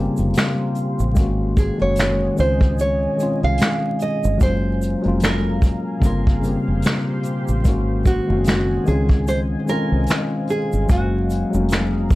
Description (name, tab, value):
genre	lo-fi hip hop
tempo	74 BPM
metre	4/4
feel	swing 57% on 16ths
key	Db major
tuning	A4 = 439 Hz
part	nylon-string guitar	melody	0.0-12.2 s	Gb4 to F5	-24 LUFS	right 2 dB	low-pass filter
part	tine electric piano	accompaniment	0.0-12.2 s	Db3 to F5	-22 LUFS	left 2 dB	cassette tape, low-pass filter
part	deep dark ambient pad	sustained chords	0.0-12.2 s	Gb4 to C6	-32 LUFS	equal	chorus, built-in reverb, low-pass filter
part	deep dub fingered electric bass	bass	0.0-12.2 s	F1 to Db2	-22 LUFS	equal	none
part	vintage brush drum kit	drums	0.2-12.2 s	finger snaps, hi-hat, kick drum, snare drum	-18 LUFS	equal	none
part	egg shaker	percussion	0.2-12.2 s	none	-43 LUFS	right 6 dB	none
room	light reverb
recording	dark, warm production, vinyl crackle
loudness	-17 LUFS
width	side -18 dB against mid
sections	0.0-12.2 A section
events	none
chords	0.0 Bbm69/F; 1.2 Ab7sus4; 2.4 Dbmaj9; 4.4 Gbmaj9; 6.0 Bbm69; 7.7 Ab7sus4; 8.9 Dbmaj9; 10.9 Gbmaj9